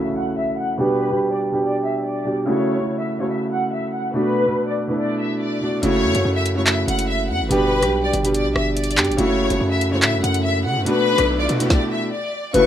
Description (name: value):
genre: hip hop, drill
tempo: 143 BPM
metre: 4/4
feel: half-time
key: F# phrygian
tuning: A4 = 442 Hz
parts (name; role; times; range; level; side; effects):
- rich studio violin section; melody; 0.0-12.7 s; B4 to C#6; -23 LUFS; left 2 dB; low-pass filter, digital delay, plate reverb
- warm concert grand piano; accompaniment; 0.0-12.7 s; B2 to G4; -20 LUFS; right 1 dB; low-pass filter, plate reverb
- impact and riser; sound effects; 0.0-0.8, 10.2-11.7 s; none; -33 LUFS; left 1 dB; none
- hard-hitting 808-style bass; bass; 5.8-12.7 s; F#1 to C#3; -23 LUFS; equal; none
- drill drum kit; drums; 5.8-12.6 s; handclaps, hi-hat, kick drum, rim click, snare drum; -20 LUFS; equal; none
- hollow clarinet-like synth lead; second line; 12.5-12.7 s; B4; -12 LUFS; left 4 dB; chorus
- muted studio string section; sustained chords; 12.5-12.7 s; F#3 to A4; -37 LUFS; left 3 dB; none
room: moderate studio reverb, RT60 0.6 s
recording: rough home demo mix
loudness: -18 LUFS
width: side -10 dB against mid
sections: 0.0-12.5 A section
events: impact 0.0-0.8; filter sweep 0.0-5.8; riser 10.2-12.5; stop 11.7-12.5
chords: 0.0 F#m7; 0.8 G; 2.5 F#m7; 4.2 Bm7; 5.8 F#m7; 7.5 G; 9.2 F#m7; 10.9 Bm7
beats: 0.37 | 0.79 1.21 1.63 2.05 | 2.47 2.89 3.31 3.73 | 4.15 4.57 4.99 5.41 | 5.83 6.25 6.67 7.09 | 7.51 7.93 8.35 8.77 | 9.19 9.61 10.03 10.44 | 10.86 11.28 11.70 12.12 | 12.54